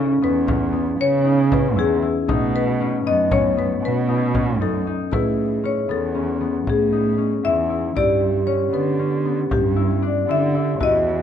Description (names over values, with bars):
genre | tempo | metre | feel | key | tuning
contemporary instrumental, chamber music in an uneven meter | 233 BPM (eighths) | 11/8 | straight | A lydian | A4 = 440 Hz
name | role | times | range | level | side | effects
marimba with medium mallets | melody | 0.0-11.2 s | G4 to E5 | -23 LUFS | left 5 dB | none
vibraphone with soft mallets | second line | 0.0-11.2 s | A3 to G#4 | -26 LUFS | right 5 dB | none
concert harp | arpeggios | 0.0-11.2 s | B3 to E4 | -24 LUFS | left 9 dB | none
dark cello | bass | 0.0-11.2 s | E2 to D3 | -22 LUFS | right 4 dB | none
frame drum | percussion | 0.5-11.0 s | none | -26 LUFS | left 1 dB | none
room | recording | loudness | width
light reverb | dark, warm production, nothing above 10.5 kHz | -17 LUFS | side -9 dB against mid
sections
0.0-5.1 A section; 5.1-11.2 B section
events
none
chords
0.0 A (rootless); 2.3 B7; 5.1 Amaj9; 8.0 G6